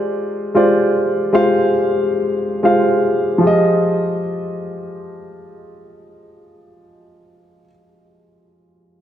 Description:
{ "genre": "amapiano", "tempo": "free time", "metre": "none", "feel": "none", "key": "F dorian", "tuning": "A4 = 440 Hz", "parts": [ { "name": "dark baby grand piano", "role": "accompaniment", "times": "0.0-9.0 s", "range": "F3 to F5", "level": "-14 LUFS", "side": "equal", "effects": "none" } ], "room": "moderate lush hall reverb, RT60 2.7 s", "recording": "dark, warm production", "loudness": "-14 LUFS", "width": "side -10 dB against mid", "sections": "0.0-3.4 A section; 3.4-7.6 B section", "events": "none", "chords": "0.0 Fm69/Ab; 3.4 Fm9" }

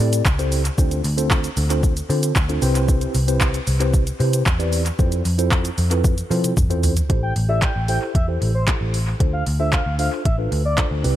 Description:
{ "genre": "dance-pop", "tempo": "114 BPM", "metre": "4/4", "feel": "straight", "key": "A minor", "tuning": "A4 = 441 Hz", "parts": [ { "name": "mellow tine electric piano", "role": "accompaniment", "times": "0.0-11.2 s", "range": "C4 to D5", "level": "-25 LUFS", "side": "equal", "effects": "medium stereo tremolo, sidechain pumping, analog delay" }, { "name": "vintage muted picked electric bass", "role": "bass", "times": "0.0-11.2 s", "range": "A1 to F3", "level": "-21 LUFS", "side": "equal", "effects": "sidechain pumping" }, { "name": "smooth R&B drum kit", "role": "drums", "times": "0.0-11.2 s", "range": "handclaps, hi-hat, kick drum, shaker, toms", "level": "-21 LUFS", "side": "equal", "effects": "none" }, { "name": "expressive synth lead", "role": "melody", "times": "7.2-10.9 s", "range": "C5 to G5", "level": "-26 LUFS", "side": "equal", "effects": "chorus, sidechain pumping, analog delay" } ], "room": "little or no reverb", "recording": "echo-heavy mix", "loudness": "-17 LUFS", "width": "side -13 dB against mid", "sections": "0.0-7.1 A section; 7.1-11.2 B section", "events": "drum fill 6.0-7.1", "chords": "0.0 Am7; 0.8 Dm7; 2.6 Cmaj7; 5.0 Fmaj7; 7.1 Am7; 9.2 Dm7" }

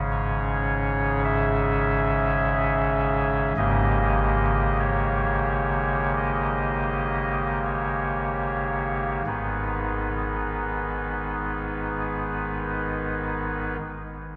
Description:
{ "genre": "classical, chorale-style piece for pipe organ", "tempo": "36-53 BPM", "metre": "4/4", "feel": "rubato", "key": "G# minor", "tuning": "A4 = 440 Hz", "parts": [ { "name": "chamber organ, soft reed", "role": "solo", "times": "0.0-13.8 s", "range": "G#1 to E5", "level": "-25 LUFS", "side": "equal", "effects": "none" } ], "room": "wet cathedral reverb, RT60 4.3 s", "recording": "recorded in a church or concert hall", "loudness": "-25 LUFS", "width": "mono", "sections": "0.0-9.3 A section; 9.3-14.4 B section", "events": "slowing down 0.0-9.3", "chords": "0.0 C#m/G#; 3.6 D#7/G#; 9.3 G#m" }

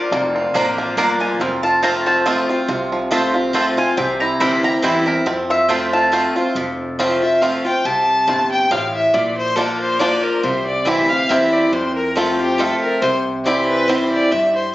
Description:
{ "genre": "bluegrass", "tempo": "139 BPM", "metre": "3/4", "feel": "swing 55% on 8ths", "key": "F major", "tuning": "A4 = 440 Hz", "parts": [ { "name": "bluegrass banjo", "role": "melody", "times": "0.0-14.0 s", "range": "F3 to Bb4", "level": "-22 LUFS", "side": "right 2 dB", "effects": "none" }, { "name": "mandolin", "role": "melody", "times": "0.0-6.3 s", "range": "D5 to B5", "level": "-20 LUFS", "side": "equal", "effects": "analog delay" }, { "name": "picked swing-style acoustic guitar", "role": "accompaniment", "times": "0.0-14.7 s", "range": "F2 to F4", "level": "-19 LUFS", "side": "equal", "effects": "none" }, { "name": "upright bass", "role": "bass", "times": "0.1-14.7 s", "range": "F1 to G2", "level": "-32 LUFS", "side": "equal", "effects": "none" }, { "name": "mandolin", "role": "stabs", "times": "0.5-6.2 s", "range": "Bb3 to Bb5", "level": "-24 LUFS", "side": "right 3 dB", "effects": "analog delay" }, { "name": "clear fiddle", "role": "second line", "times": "7.2-14.7 s", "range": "G4 to A5", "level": "-18 LUFS", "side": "left 1 dB", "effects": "none" } ], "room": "moderate large studio reverb, RT60 0.9 s", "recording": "recorded on a phone in the room, studio reverb, compression, nothing above 7.7 kHz", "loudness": "-15 LUFS", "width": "side -16 dB against mid", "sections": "0.0-6.6 A section; 6.6-14.7 A section", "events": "mandolin solo 0.0-6.6; fiddle solo 6.6-14.7", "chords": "0.0 Bb; 1.4 F; 4.0 C; 5.3 F; 9.1 Bb; 10.4 C; 11.7 F; 13.0 C" }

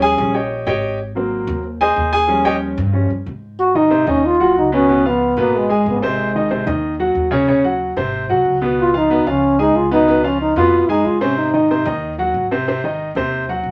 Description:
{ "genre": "Afro-Cuban jazz", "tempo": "185 BPM", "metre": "4/4", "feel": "straight", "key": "Ab mixolydian", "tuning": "A4 = 439 Hz", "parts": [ { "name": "warm baby grand piano", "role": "accompaniment", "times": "0.0-13.7 s", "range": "Cb3 to Ab5", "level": "-19 LUFS", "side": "equal", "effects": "none" }, { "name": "upright bass", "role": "bass", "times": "0.0-13.7 s", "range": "Ab1 to Ab2", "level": "-28 LUFS", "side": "equal", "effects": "none" }, { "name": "mellow trombone", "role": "melody", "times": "3.6-6.7, 8.8-12.0 s", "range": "Ab3 to Gb4", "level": "-18 LUFS", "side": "equal", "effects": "none" } ], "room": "wet studio reverb, RT60 0.5 s", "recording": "none", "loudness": "-17 LUFS", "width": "mono", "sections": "0.0-3.6 A section; 3.6-13.7 B section", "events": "grand piano solo 0.0-3.6", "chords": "0.0 Eb7; 1.0 Ab7; 2.3 Eb7; 3.6 Ab7; 4.9 Db7; 6.2 Ab7; 8.8 Db7; 11.4 Ab7" }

